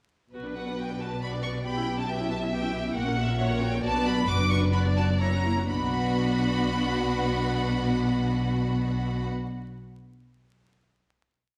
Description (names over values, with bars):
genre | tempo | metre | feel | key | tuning
quick classical-period movement for string orchestra | 122-139 BPM | 3/4 | rubato | B minor | A4 = 440 Hz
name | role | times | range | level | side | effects
rich studio violin section | second line | 0.3-9.3 s | F#4 to G5 | -36 LUFS | equal | none
rich studio viola section | accompaniment | 0.3-9.3 s | A#3 to B4 | -34 LUFS | equal | none
rich studio double bass section | bass | 0.3-9.3 s | F#1 to B1 | -33 LUFS | equal | none
warm studio cello section | bass | 0.3-9.3 s | F#2 to B2 | -31 LUFS | equal | none
rich studio violin section | melody | 0.6-9.3 s | E5 to D6 | -35 LUFS | equal | none
room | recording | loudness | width
wet recital hall reverb, RT60 1.4 s | recorded in a church or concert hall, vinyl crackle | -27 LUFS | mono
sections
0.3-5.7 A section; 5.7-8.5 final chord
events
slowing down 2.3-5.7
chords
0.3 Bm; 1.6 C#m7b5/B; 3.0 F#/A#; 3.8 Bm; 4.3 Bm/F#; 5.2 F#7; 5.7 Bm